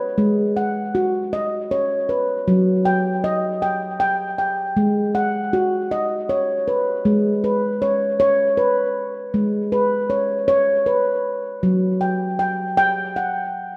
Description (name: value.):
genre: world meditative, meditative tuned percussion.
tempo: 52 BPM (dotted quarters).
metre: 6/8.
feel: straight.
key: G# minor pentatonic.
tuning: A4 = 440 Hz.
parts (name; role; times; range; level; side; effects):
handpan; solo; 0.0-13.8 s; F#3 to G5; -20 LUFS; equal; diffuse ambient delay.
room: wet echo chamber reverb, RT60 1.6 s, small room ambience.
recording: none.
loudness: -20 LUFS.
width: mono.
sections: 0.0-7.1 A section; 7.1-13.8 B section.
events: none.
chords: 0.0 G#m; 2.5 Gmaj7#5/F#; 4.8 G#m; 11.6 D#aug/F# (rootless).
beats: | 0.18 1.33 | 2.47 3.62 | 4.76 5.91 | 7.06 8.20 | 9.35 10.49 | 11.64 12.78.